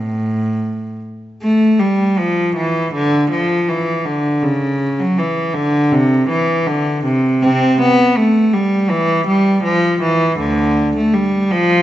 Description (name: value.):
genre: classical, baroque-style suite movement for unaccompanied cello.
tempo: 80 BPM.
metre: 4/4.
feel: rubato.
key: A minor.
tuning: A4 = 440 Hz.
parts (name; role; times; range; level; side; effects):
rich cello; solo; 0.0-11.8 s; D2 to C4; -13 LUFS; equal; none.
room: wet recital hall reverb, RT60 1.7 s.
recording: nothing above 7.7 kHz.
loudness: -13 LUFS.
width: side -13 dB against mid.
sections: 0.0-1.4 A section; 1.4-11.8 B section.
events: none.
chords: none.